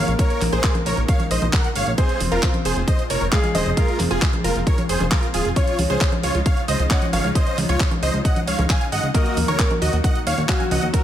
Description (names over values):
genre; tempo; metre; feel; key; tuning
uplifting trance; 134 BPM; 4/4; straight; unclear; A4 = 440 Hz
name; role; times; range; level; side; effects
dense compressed supersaw; melody; 0.0-11.0 s; F4 to Ab5; -24 LUFS; right 1 dB; sidechain pumping, ping-pong delay
clear grand piano; second line; 0.0-11.0 s; Gb3 to Db5; -29 LUFS; left 2 dB; vintage 12-bit sampler grit, ping-pong delay
wide unison pluck; second line; 0.0-11.0 s; Ab4 to Ab5; -32 LUFS; right 1 dB; none
lush unison pad; sustained chords; 0.0-11.0 s; Bb2 to Gb4; -30 LUFS; equal; chorus, sidechain pumping
plucky analog bass; bass; 0.0-10.9 s; Eb1 to Eb2; -23 LUFS; equal; sidechain pumping
house drum kit; drums; 0.1-11.0 s; congas, handclaps, hi-hat; -25 LUFS; equal; none
electronic kick drum; drums; 0.2-11.0 s; none; -20 LUFS; equal; none
room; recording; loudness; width
light reverb, digital ambience; none; -17 LUFS; side -11 dB against mid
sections
0.0-11.0 A section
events
none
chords
0.0 Bbm7; 2.0 Fsus4; 5.6 Dbadd9; 9.1 Ebm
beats
| 0.19 0.64 1.08 1.53 | 1.98 2.43 2.88 3.32 | 3.77 4.22 4.67 5.12 | 5.56 6.01 6.46 6.91 | 7.35 7.80 8.25 8.70 | 9.14 9.59 10.04 10.49 | 10.94